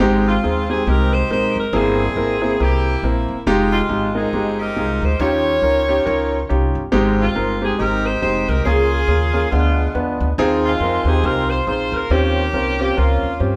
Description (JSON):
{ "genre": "uptempo gospel", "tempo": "139 BPM", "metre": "4/4", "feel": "swing 59% on 8ths", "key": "Ab major", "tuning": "A4 = 439 Hz", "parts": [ { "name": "warm upright piano", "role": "accompaniment", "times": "0.0-13.6 s", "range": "G2 to B4", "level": "-22 LUFS", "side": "equal", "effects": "none" }, { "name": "upright bass", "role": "bass", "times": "0.0-13.6 s", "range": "E1 to G2", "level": "-23 LUFS", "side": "equal", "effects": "none" }, { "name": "edgy saxophone section", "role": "melody", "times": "0.3-13.6 s", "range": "Ab3 to Db5", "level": "-23 LUFS", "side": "equal", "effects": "none" } ], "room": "moderate large studio reverb, RT60 1.1 s", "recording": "band playing live in one room", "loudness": "-18 LUFS", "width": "mono", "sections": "0.0-13.6 A section", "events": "none", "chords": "0.0 Abmaj7; 1.7 C7b13/G; 3.5 Fm9; 5.2 Eb9; 6.9 Abmaj7; 8.7 Db6; 9.5 Ddim7; 10.4 Ab6/Eb; 12.1 Eb13" }